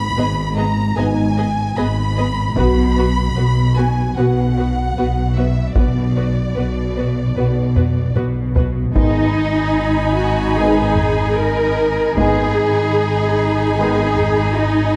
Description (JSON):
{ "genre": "cinematic, hybrid orchestral and electronic film score", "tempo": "75 BPM", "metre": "4/4", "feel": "straight", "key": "G# minor", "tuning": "A4 = 441 Hz", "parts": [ { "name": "warm symphonic violin section", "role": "melody", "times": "0.0-15.0 s", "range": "D5 to B5", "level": "-29 LUFS", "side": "equal", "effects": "none" }, { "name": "dark symphonic double bass section", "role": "bass", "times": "0.0-15.0 s", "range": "G#1 to B1", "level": "-21 LUFS", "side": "equal", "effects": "none" }, { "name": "rich symphonic cello section", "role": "bass", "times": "0.0-15.0 s", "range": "G#2 to A#4", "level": "-23 LUFS", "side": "equal", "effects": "none" }, { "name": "dark symphonic violin section", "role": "second line", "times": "0.2-15.0 s", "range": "B4 to G#5", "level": "-31 LUFS", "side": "equal", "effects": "none" }, { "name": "warm symphonic viola section", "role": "accompaniment", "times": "0.2-15.0 s", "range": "B3 to G#4", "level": "-26 LUFS", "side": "equal", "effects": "none" }, { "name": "mellow French horn section", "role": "sustained chords", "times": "1.0-14.1 s", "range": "B3 to F#4", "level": "-28 LUFS", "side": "equal", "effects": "none" }, { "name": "taiko ensemble", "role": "drums", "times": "2.6-14.5 s", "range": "none", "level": "-22 LUFS", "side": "equal", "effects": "none" }, { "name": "clear trombone section", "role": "sustained chords", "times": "9.0-14.1 s", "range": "D#3 to G#3", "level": "-28 LUFS", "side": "equal", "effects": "none" } ], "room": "moderate scoring stage reverb, RT60 2.1 s", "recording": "dark, warm production", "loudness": "-17 LUFS", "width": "mono", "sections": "0.0-9.0 A section; 9.0-15.0 A section", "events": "drum fill 7.8-9.0", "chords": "0.0 G#m; 2.6 Bm; 9.0 G#m", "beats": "0.17 0.97 1.77 | 2.57 3.37 4.17 4.97 | 5.77 6.57 7.37 8.17 | 8.97 9.77 10.57 11.37 | 12.17 12.97 13.77 14.57" }